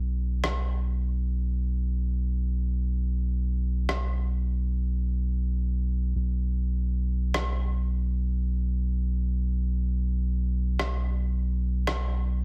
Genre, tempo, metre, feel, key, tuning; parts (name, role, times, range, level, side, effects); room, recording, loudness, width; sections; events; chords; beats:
deep dubstep; free time; A4 = 440 Hz
soft dub sub bass; bass; 0.0-12.4 s; B1; -28 LUFS; equal
electronic rim click; drums; 0.4-0.5, 3.9-4.0, 7.3-7.4, 10.8-12.0 s; -34 LUFS; equal; overdrive
little or no reverb; heavily compressed radio sound, multiband compression; -28 LUFS; mono
0.0-12.4 A section
free time